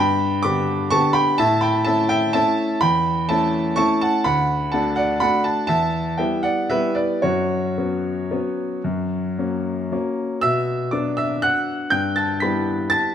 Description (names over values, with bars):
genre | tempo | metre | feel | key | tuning
classical, piano waltz | 110-131 BPM | 3/4 | rubato | B minor | A4 = 438 Hz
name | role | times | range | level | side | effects
clear grand piano | solo | 0.0-13.1 s | D2 to B6 | -18 LUFS | equal | none
room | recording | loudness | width
moderate recital hall reverb, RT60 1.7 s | close, detailed microphones | -18 LUFS | side -9 dB against mid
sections
0.0-10.4 A section; 10.4-13.1 B section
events
none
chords
0.0 G; 1.4 A; 4.3 D; 5.7 Em; 7.2 F#sus4; 8.9 F#; 10.4 Bm; 11.9 Em/G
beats
0.43 0.91 | 1.38 1.86 2.35 | 2.82 3.29 3.78 | 4.26 4.74 5.22 | 5.70 6.19 6.71 | 7.24 7.79 8.33 | 8.86 9.39 9.93 | 10.44 10.93 11.44 | 11.92 12.41 12.90